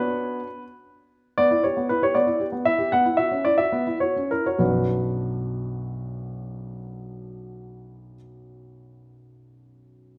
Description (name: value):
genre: classical-period piano sonatina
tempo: 67-79 BPM (dotted quarters)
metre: 6/8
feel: rubato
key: B minor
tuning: A4 = 440 Hz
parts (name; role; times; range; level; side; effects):
- warm baby grand piano; solo; 0.0-10.2 s; B1 to F#5; -24 LUFS; equal; none
room: moderate recital hall reverb, RT60 1.4 s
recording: none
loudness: -23 LUFS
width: mono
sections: 0.0-1.4 A section; 1.4-4.6 B section; 4.6-8.1 C section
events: slowing down 0.6-4.6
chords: 0.0 Bm; 1.4 Em/B; 2.9 F#5/B; 4.6 Bm